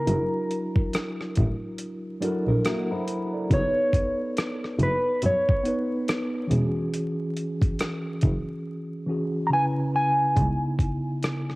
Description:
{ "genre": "lo-fi hip hop", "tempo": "70 BPM", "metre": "4/4", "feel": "swing 59% on 16ths", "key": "C# dorian", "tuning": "A4 = 440 Hz", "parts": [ { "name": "mellow electric guitar", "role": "melody", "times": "0.0-11.2 s", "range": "A#4 to A#5", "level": "-26 LUFS", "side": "equal", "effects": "low-pass filter, cassette tape" }, { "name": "mellow tine electric piano", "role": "accompaniment", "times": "0.0-11.6 s", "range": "C#3 to A#5", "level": "-28 LUFS", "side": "equal", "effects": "medium stereo tremolo, cassette tape, low-pass filter" }, { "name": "warm double bass", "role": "bass", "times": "0.1-10.4 s", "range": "E1 to F#2", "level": "-25 LUFS", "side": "equal", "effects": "none" }, { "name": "dusty soul sampler-style drum kit", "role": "drums", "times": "0.1-11.6 s", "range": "hi-hat, kick drum, rim click", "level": "-26 LUFS", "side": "equal", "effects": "overdrive, cassette tape" }, { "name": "nylon-string guitar", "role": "second line", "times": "2.2-3.5 s", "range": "A#3 to D5", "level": "-32 LUFS", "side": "equal", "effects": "low-pass filter, cassette tape, analog delay" } ], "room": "moderate spring reverb, RT60 2.7 s", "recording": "home recording on cassette, vinyl crackle", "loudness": "-23 LUFS", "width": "side -22 dB against mid", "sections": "0.0-10.4 A section; 10.4-11.6 B section", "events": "silent gap 8.7-10.4", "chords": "0.1 F#7alt; 3.5 Badd9/F#; 6.5 E69; 9.5 C#m7; 10.4 C#m9" }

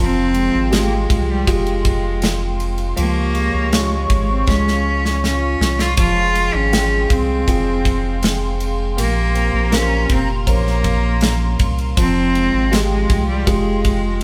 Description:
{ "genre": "pop ballad", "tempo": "80 BPM", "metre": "4/4", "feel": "straight", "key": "F minor", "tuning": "A4 = 440 Hz", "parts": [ { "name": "bright cello", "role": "melody", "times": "0.0-14.2 s", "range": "G3 to F4", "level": "-23 LUFS", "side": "equal", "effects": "none" }, { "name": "dark French horn section", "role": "second line", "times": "0.0-14.2 s", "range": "F4 to Ab4", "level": "-31 LUFS", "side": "equal", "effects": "none" }, { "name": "warm upright piano", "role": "accompaniment", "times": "0.0-14.2 s", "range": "F3 to G5", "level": "-28 LUFS", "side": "equal", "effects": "none" }, { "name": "airy breathy pad", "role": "sustained chords", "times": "0.0-14.2 s", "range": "Ab3 to Db6", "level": "-29 LUFS", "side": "equal", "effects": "chorus" }, { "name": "fingerpicked plugged-in steel-string acoustic guitar", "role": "arpeggios", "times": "0.0-14.2 s", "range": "F2 to G4", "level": "-33 LUFS", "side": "equal", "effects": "none" }, { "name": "warm sub bass", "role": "bass", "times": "0.0-14.2 s", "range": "F1 to Db2", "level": "-23 LUFS", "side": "equal", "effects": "none" }, { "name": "modern studio drum kit", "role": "drums", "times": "0.3-14.2 s", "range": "kick drum, ride cymbal, snare drum", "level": "-23 LUFS", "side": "equal", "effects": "none" } ], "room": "moderate stone room reverb, RT60 1.0 s", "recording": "band playing live in one room", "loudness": "-17 LUFS", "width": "mono", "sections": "0.0-14.2 A section", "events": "drum fill 4.5-6.0", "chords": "0.0 Fmadd9; 3.0 Db; 6.0 Fmadd9; 9.0 Bbmadd9; 12.0 Fmadd9" }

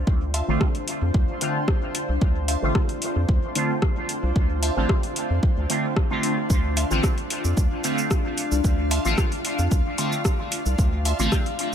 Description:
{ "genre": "dub techno", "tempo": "112 BPM", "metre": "4/4", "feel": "straight", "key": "D minor", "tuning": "A4 = 438 Hz", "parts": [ { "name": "granular cloud pad", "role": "sustained chords", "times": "0.0-11.7 s", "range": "D4 to F5", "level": "-29 LUFS", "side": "left 2 dB", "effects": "built-in reverb, sidechain pumping" }, { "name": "round analog bass", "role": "bass", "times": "0.0-11.3 s", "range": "A1 to F2", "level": "-24 LUFS", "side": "equal", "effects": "sidechain pumping" }, { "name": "electronic kick drum", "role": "drums", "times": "0.1-11.4 s", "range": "none", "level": "-22 LUFS", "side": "equal", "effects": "overdrive" }, { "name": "wavetable chord stab", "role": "riff", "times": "0.3-11.2 s", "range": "E5 to C6", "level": "-35 LUFS", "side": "right 2 dB", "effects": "sidechain pumping, dub echo" }, { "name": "deep house drum kit", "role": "drums", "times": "0.3-11.7 s", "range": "cabasa, hi-hat, rim click", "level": "-29 LUFS", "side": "left 1 dB", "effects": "overdrive" }, { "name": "resonant sweep polysynth", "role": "stabs", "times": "0.5-11.3 s", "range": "D3 to F4", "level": "-28 LUFS", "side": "right 1 dB", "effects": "chorus, phaser, sidechain pumping, dub echo" } ], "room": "digital ambience", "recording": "none", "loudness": "-20 LUFS", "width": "side -9 dB against mid", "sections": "0.0-11.7 A section", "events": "none", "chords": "0.0 Dm7" }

